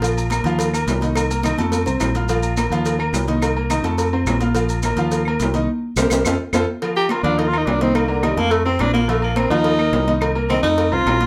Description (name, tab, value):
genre	latin, salsa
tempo	212 BPM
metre	4/4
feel	straight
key	unclear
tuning	A4 = 440 Hz
part	clear concert grand piano	accompaniment	0.0-11.3 s	Eb3 to F6	-26 LUFS	equal	none
part	fingered electric bass	bass	0.0-11.3 s	Bb1 to F2	-24 LUFS	equal	none
part	agogo bells and timbales	percussion	0.0-11.2 s	none	-28 LUFS	equal	none
part	congas	percussion	0.0-11.3 s	none	-28 LUFS	equal	none
part	cowbell	percussion	0.0-11.3 s	none	-29 LUFS	equal	none
part	maracas	percussion	0.0-6.6 s	none	-34 LUFS	equal	none
part	claves	percussion	0.3-11.2 s	none	-34 LUFS	equal	none
part	warm tenor saxophone	melody	7.0-11.3 s	D3 to G4	-22 LUFS	equal	none
room	wet studio reverb, RT60 0.5 s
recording	band playing live in one room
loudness	-19 LUFS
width	mono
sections	0.0-6.8 A section; 6.8-11.3 B section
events	drum fill 1.6-2.3, 6.4-6.8; band accent 5.7-6.8; tenor saxophone solo 6.8-11.3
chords	0.0 Bb5; 0.6 Ebsus2; 1.2 Cm7; 1.7 F; 2.3 Bb5; 2.9 Ebsus2; 3.4 Cm7; 4.0 F; 4.5 Bb5; 5.1 Ebsus2; 5.7 C5; 6.2 F; 6.8 Bb5; 7.4 Ebsus2; 8.0 Cm7; 8.5 F; 9.1 Bb5; 9.7 Ebsus2; 10.2 Cm7